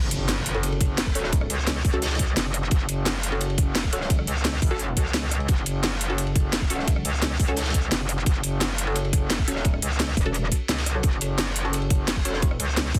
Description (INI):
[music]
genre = dark technical drum and bass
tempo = 173 BPM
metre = 4/4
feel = straight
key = F# minor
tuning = A4 = 440 Hz
[part]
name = metallic wobble bass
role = bass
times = 0.0-13.0 s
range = F#1 to C#2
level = -28 LUFS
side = equal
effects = chorus, tube saturation, sidechain pumping
[part]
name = impact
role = sound effects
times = 0.0-1.3 s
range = none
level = -35 LUFS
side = equal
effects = none
[part]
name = crunchy breakbeat drum kit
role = drums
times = 0.1-13.0 s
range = ride cymbal, snare drum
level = -37 LUFS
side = equal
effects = high-pass filter on cymbals, high-pass filter on snare, high-pass filter on room
[part]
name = drum and bass drum kit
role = drums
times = 0.1-13.0 s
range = hi-hat, rim click, snare drum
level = -29 LUFS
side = equal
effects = none
[part]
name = filtered dub chord stab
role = stabs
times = 0.5-12.4 s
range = C#4 to A4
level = -35 LUFS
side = equal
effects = phaser, analog chorus, delay
[part]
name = electronic kick drum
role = drums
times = 0.8-13.0 s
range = none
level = -25 LUFS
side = equal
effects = none
[part]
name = metallic wobble bass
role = bass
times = 10.2-10.5 s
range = E1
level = -28 LUFS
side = equal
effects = chorus
[sound]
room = small room ambience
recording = dense, heavily limited modern master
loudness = -24 LUFS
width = mono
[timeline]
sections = 0.0-13.0 A section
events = impact 0.0-1.3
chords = 0.0 F#m